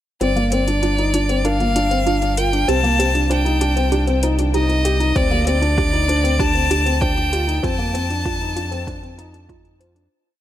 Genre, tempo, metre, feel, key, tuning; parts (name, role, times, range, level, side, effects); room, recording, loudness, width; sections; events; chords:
piano and strings electronica; 97 BPM; 4/4; straight; G minor; A4 = 440 Hz
bright violin; melody; 0.2-9.5 s; D5 to A5; -21 LUFS; left 1 dB; tape echo
soft round pluck; arpeggios; 0.2-9.9 s; F4 to C5; -28 LUFS; right 4 dB; chorus, sidechain pumping, tape echo
felt-muted upright piano; riff; 0.2-10.1 s; Bb3 to G4; -21 LUFS; left 2 dB; tape echo
round analog bass; bass; 0.2-10.1 s; G1 to F2; -21 LUFS; equal; sidechain pumping
electronic hi-hat; drums; 0.2-10.1 s; -30 LUFS; left 2 dB; overdrive
electronic kick drum; drums; 5.2-9.6 s; -23 LUFS; equal; overdrive
light reverb, small room ambience; -16 LUFS; side -12 dB against mid
0.2-10.1 build
build-up 0.2-10.1; filter sweep on synth arpeggio sound 0.2-10.1; fade-out 6.8-10.1
0.2 Gm7; 2.7 Cm; 5.2 D7sus4; 7.6 F7